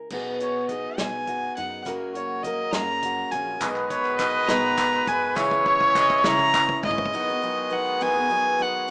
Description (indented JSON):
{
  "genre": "indie folk with a building arrangement",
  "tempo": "68 BPM (dotted quarters)",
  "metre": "6/8",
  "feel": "straight",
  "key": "B major",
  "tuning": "A4 = 441 Hz",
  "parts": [
    { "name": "fingerpicked old ladder-braced acoustic guitar", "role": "accompaniment", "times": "0.0-3.6 s", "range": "F#2 to A#4", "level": "-33 LUFS", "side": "equal", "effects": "none" },
    { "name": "picked steel-string acoustic guitar", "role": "accompaniment", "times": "0.1-8.9 s", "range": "F#2 to G#4", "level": "-30 LUFS", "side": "equal", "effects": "none" },
    { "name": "upright bass", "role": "bass", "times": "0.1-7.1 s", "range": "F#1 to C#3", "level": "-41 LUFS", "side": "equal", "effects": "none" },
    { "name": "natural country drum kit", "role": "drums", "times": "0.1-7.2 s", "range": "crash cymbal, hi-hat, kick drum, snare drum", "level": "-32 LUFS", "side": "equal", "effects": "none" },
    { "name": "warm fiddle", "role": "melody", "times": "0.4-8.9 s", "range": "C#5 to A#5", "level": "-24 LUFS", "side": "equal", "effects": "none" },
    { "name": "warm trumpet", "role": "second line", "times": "3.6-6.8 s", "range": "B4 to C#5", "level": "-22 LUFS", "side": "equal", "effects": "plate reverb, tape echo" },
    { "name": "clear baby grand piano", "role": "accompaniment", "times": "3.6-7.1 s", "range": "B1 to E5", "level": "-34 LUFS", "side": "equal", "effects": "none" },
    { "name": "hand-pumped harmonium", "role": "sustained chords", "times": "3.6-8.9 s", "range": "C#3 to F#4", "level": "-32 LUFS", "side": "equal", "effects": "plate reverb" },
    { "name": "group handclap", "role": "percussion", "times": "3.6-6.9 s", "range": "none", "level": "-31 LUFS", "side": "equal", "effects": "none" },
    { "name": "tambourine", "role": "percussion", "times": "3.6-6.7 s", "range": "none", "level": "-43 LUFS", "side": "equal", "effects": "none" }
  ],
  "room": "light reverb",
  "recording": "rough home demo mix, small speaker sound",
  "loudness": "-21 LUFS",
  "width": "side -36 dB against mid",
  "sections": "0.1-7.1 A section; 7.1-8.9 B section",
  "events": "build-up 0.1-7.1; drum fill 0.1-7.1",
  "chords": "0.1 B6; 1.9 F#add9; 3.6 B6; 5.4 C#m; 7.1 B6"
}